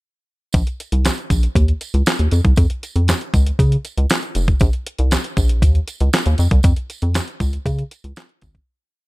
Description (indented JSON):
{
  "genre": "early-eighties boogie funk",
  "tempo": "118 BPM",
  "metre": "4/4",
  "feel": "straight",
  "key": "unclear",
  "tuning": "A4 = 439 Hz",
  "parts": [
    { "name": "rubbery square bass", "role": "bass", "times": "0.5-8.6 s", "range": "F1 to Db3", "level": "-16 LUFS", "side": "equal", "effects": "none" },
    { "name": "clean 12-bit digital drum machine", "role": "drums", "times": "0.5-8.7 s", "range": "handclaps, hi-hat, kick drum, snare drum", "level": "-18 LUFS", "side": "equal", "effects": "none" },
    { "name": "tambourine", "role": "percussion", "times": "0.5-8.5 s", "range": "none", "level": "-34 LUFS", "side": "right 6 dB", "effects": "none" }
  ],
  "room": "little or no reverb",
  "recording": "dark, warm production",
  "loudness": "-15 LUFS",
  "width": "side -21 dB against mid",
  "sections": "0.5-8.7 breakdown",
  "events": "fade-out 6.6-8.7",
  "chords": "none",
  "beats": "| 0.54 1.05 1.56 2.07 | 2.58 3.08 3.59 4.10 | 4.61 5.12 5.63 6.13 | 6.64 7.15 7.66 8.17"
}